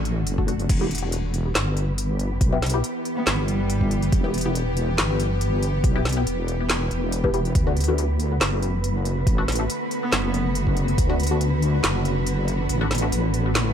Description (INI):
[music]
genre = deep dubstep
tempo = 140 BPM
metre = 4/4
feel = swing 54% on 16ths, half-time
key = E minor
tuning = A4 = 440 Hz
[part]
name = bowed-like drone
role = sustained chords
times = 0.0-13.7 s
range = D3 to G4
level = -30 LUFS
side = left 1 dB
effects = built-in reverb
[part]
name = deep soft wobble bass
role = bass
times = 0.0-13.7 s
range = E1 to D2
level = -24 LUFS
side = equal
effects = chorus, tube saturation
[part]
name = deep house drum kit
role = drums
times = 0.1-13.6 s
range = crash cymbal, handclaps, hi-hat, snare drum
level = -26 LUFS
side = equal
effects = none
[part]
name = filtered dub chord stab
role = stabs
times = 0.4-13.1 s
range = A3 to G4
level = -30 LUFS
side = left 4 dB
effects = phaser, dub echo
[part]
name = electronic kick drum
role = drums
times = 0.4-11.1 s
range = none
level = -22 LUFS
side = equal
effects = none
[part]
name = wind-like tuned noise texture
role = texture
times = 1.2-13.7 s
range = B3 to B4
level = -31 LUFS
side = equal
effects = built-in reverb
[part]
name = rich cello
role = melody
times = 3.2-4.1, 10.0-10.3 s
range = G3 to B3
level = -30 LUFS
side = right 2 dB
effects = dub echo
[sound]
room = little or no reverb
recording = echo-heavy mix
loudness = -20 LUFS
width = side -8 dB against mid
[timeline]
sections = 0.0-13.7 A section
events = kick drops out 12.7-13.7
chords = 0.0 D; 0.7 Em; 7.6 D